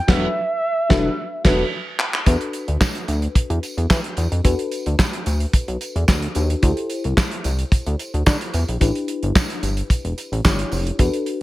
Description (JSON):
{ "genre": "early-eighties boogie funk", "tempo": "110 BPM", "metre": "4/4", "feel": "straight", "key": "E minor", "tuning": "A4 = 444 Hz", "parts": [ { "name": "mellow horn-like synth lead", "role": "melody", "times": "0.0-2.0 s", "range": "E5 to G5", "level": "-23 LUFS", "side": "right 1 dB", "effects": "chorus" }, { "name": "mellow FM electric piano", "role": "accompaniment", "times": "0.0-11.4 s", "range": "D4 to C#5", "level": "-27 LUFS", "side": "left 3 dB", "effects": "chorus, phaser" }, { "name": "mellow synth brass", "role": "second line", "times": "0.1-1.6 s", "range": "F#3 to B4", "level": "-28 LUFS", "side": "right 1 dB", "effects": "chorus, slapback echo" }, { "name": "chorused synth bass", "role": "bass", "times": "0.1-11.1 s", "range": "E1 to E3", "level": "-21 LUFS", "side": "equal", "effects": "none" }, { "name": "damped 70s drum kit", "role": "drums", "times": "0.1-11.4 s", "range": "crash cymbal, handclaps, hi-hat, kick drum, snare drum", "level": "-19 LUFS", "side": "equal", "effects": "gated reverb" }, { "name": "tambourine", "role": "percussion", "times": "2.3-11.1 s", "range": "none", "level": "-36 LUFS", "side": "right 2 dB", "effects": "none" } ], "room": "little or no reverb", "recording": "none", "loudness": "-18 LUFS", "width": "side -17 dB against mid", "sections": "0.0-2.3 A section; 2.3-11.4 B section", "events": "band accent 0.1-2.3; drum fill 1.2-2.3", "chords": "0.1 E9sus4; 6.6 D9sus4; 8.8 A9sus4", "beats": "| 0.08 0.63 1.17 1.72 | 2.26 2.81 3.35 3.90 | 4.45 4.99 5.54 6.08 | 6.63 7.17 7.72 8.26 | 8.81 9.36 9.90 10.45 | 10.99" }